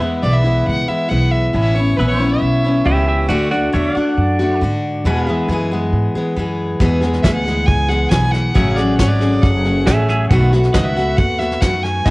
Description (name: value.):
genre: honky-tonk and classic country.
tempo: 137 BPM.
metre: 4/4.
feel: straight.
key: unclear.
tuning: A4 = 442 Hz.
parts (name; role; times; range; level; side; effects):
picked steel-string acoustic guitar; accompaniment; 0.0-12.1 s; E2 to G#4; -18 LUFS; left 1 dB; cassette tape.
pedal steel guitar; sustained chords; 0.0-12.1 s; G#4 to G#5; -27 LUFS; right 1 dB; lush chorus, cassette tape.
upright bass; bass; 0.0-12.1 s; F#1 to G#2; -18 LUFS; equal; none.
clear fiddle; melody; 0.2-2.8, 7.2-12.1 s; B4 to G#5; -21 LUFS; equal; cassette tape.
pedal steel guitar; second line; 2.9-4.6, 9.9-10.6 s; F#4 to F#5; -20 LUFS; right 2 dB; cassette tape.
soft brush drum kit; drums; 6.8-12.1 s; hi-hat, kick drum, snare drum; -17 LUFS; equal; cassette tape.
room: light reverb.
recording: home recording on cassette.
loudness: -13 LUFS.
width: side -22 dB against mid.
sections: 0.0-12.1 A section.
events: none.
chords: 0.0 E; 1.5 Aadd9; 3.3 D; 5.0 E; 8.6 F#madd9; 10.3 B7.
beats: 0.23 0.67 1.10 | 1.54 1.98 2.42 2.86 | 3.29 3.73 4.17 4.61 | 5.05 5.49 5.92 6.36 | 6.80 7.24 7.68 8.12 | 8.55 8.99 9.43 9.87 | 10.31 10.74 11.18 11.62 | 12.06.